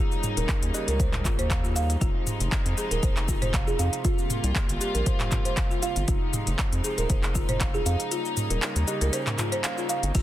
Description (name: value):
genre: afro house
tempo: 118 BPM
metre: 4/4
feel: swing 54% on 16ths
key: F minor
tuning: A4 = 441 Hz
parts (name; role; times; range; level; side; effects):
- rich studio string section; sustained chords; 0.0-10.2 s; C3 to F4; -33 LUFS; equal; sidechain pumping
- folk marimba with medium mallets; arpeggios; 0.0-10.2 s; F4 to F5; -32 LUFS; equal; sidechain pumping, dub echo
- afro-pop drum kit; drums; 0.1-10.2 s; cabasa, crash cymbal, handclaps, hi-hat, toms; -30 LUFS; equal; none
- kalimba; melody; 0.4-9.4 s; F4 to Eb5; -36 LUFS; right 4 dB; dub echo
- round analog bass; bass; 0.4-10.2 s; Eb1 to F2; -27 LUFS; equal; sidechain pumping
- electronic kick drum; drums; 0.5-10.2 s; none; -26 LUFS; equal; none
room: light reverb, digital ambience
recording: dense, heavily limited modern master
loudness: -23 LUFS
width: side -13 dB against mid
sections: 0.0-10.2 A section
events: kick drops out 8.1-10.1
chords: 0.0 Eb7; 2.0 Fm7; 4.0 C7sus4; 6.1 Fm7; 8.1 Eb7